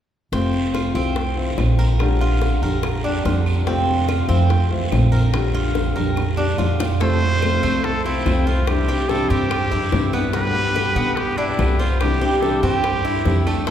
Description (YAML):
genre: latin, Cuban son and guajira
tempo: 144 BPM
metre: 4/4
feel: straight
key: F major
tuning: A4 = 440 Hz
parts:
  - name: flamenco guitar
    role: accompaniment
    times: 0.3-13.7 s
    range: B2 to G4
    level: -24 LUFS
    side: left 3 dB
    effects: none
  - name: Cuban tres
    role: arpeggios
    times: 0.3-13.7 s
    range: A3 to C5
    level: -25 LUFS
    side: right 2 dB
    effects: none
  - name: upright bass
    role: bass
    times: 0.3-13.7 s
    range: F1 to B2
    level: -20 LUFS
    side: right 1 dB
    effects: none
  - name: bongos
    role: percussion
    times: 0.3-13.7 s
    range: none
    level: -28 LUFS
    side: left 5 dB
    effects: none
  - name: guiro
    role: percussion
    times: 0.3-13.7 s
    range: none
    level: -36 LUFS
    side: right 2 dB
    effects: none
  - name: claves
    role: percussion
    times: 0.7-13.7 s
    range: none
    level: -39 LUFS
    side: right 4 dB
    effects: none
  - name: trumpet with straight mute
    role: melody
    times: 7.0-13.7 s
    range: E4 to C5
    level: -24 LUFS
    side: equal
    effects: none
room: wet cathedral reverb, RT60 5.6 s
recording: recorded in a church or concert hall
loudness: -17 LUFS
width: side -10 dB against mid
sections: 0.3-7.0 A section; 7.0-13.7 B section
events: drum fill 6.2-7.0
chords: 0.3 Fmaj7; 2.0 Bb6; 3.7 Fmaj7; 5.3 Bb6; 7.0 F; 8.7 Cadd9; 10.3 G; 12.0 Cadd9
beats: | 0.32 0.74 1.16 1.58 | 2.00 2.41 2.83 3.25 | 3.67 4.08 4.50 4.92 | 5.34 5.75 6.17 6.59 | 7.01 7.42 7.84 8.26 | 8.67 9.09 9.51 9.92 | 10.34 10.76 11.17 11.59 | 12.01 12.42 12.84 13.26 | 13.67